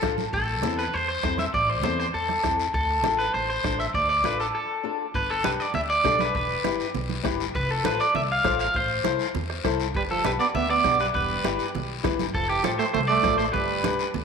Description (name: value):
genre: latin, cumbia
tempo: 200 BPM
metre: 4/4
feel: straight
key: A minor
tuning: A4 = 442 Hz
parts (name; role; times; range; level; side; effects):
- electric guitar at the edge of break-up; melody; 0.0-14.1 s; G4 to F5; -24 LUFS; right 1 dB; spring reverb
- flamenco guitar; accompaniment; 0.0-14.1 s; C4 to D5; -31 LUFS; left 11 dB; none
- upright bass; bass; 0.0-14.2 s; E1 to E2; -32 LUFS; equal; none
- bombo; percussion; 0.0-14.0 s; none; -34 LUFS; right 3 dB; none
- congas; percussion; 0.0-14.2 s; none; -35 LUFS; right 10 dB; none
- guiro; percussion; 0.0-14.2 s; none; -36 LUFS; left 11 dB; none
- clear trombone; second line; 10.0-14.1 s; E3 to B3; -29 LUFS; right 8 dB; none
room: wet echo chamber reverb, RT60 2.2 s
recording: 1960s-style stereo with parts hard left and right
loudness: -22 LUFS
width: side -6 dB against mid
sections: 0.0-5.1 A section; 5.1-14.2 B section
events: break 4.5-5.1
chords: 0.3 Am; 2.7 Dm; 5.1 G; 6.3 Em; 7.5 F; 8.7 Am; 9.9 G; 11.1 Em; 12.3 F; 13.5 G